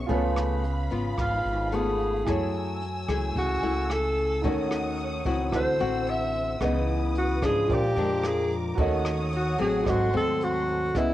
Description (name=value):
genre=bossa nova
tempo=111 BPM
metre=4/4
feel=straight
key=C# minor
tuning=A4 = 438 Hz
part: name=nylon-string guitar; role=accompaniment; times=0.0-11.1 s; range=G#2 to G#4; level=-29 LUFS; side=left 5 dB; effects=cassette tape
part: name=warm grand piano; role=accompaniment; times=0.0-11.1 s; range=D#4 to G#5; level=-34 LUFS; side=right 7 dB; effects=cassette tape
part: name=warm symphonic string section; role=sustained chords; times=0.0-10.9 s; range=A4 to E6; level=-36 LUFS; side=right 1 dB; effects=cassette tape
part: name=upright bass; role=bass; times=0.0-11.1 s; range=G#1 to F#2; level=-30 LUFS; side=right 1 dB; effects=none
part: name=jazz brush drum kit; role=drums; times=0.1-11.1 s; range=hi-hat, kick drum, rim click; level=-33 LUFS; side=right 1 dB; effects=cassette tape
part: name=breathy alto saxophone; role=melody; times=1.2-11.1 s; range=E4 to E5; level=-27 LUFS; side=equal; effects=cassette tape
room=light reverb, studio ambience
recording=home recording on cassette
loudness=-24 LUFS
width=side -14 dB against mid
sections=0.0-10.9 A section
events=alto saxophone solo 0.0-10.9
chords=0.1 C#7b13; 2.3 F#m9; 4.4 D#m7b5; 5.5 D9; 6.6 C#m9; 7.7 A#7; 8.8 D#m7b5; 9.9 G#7b9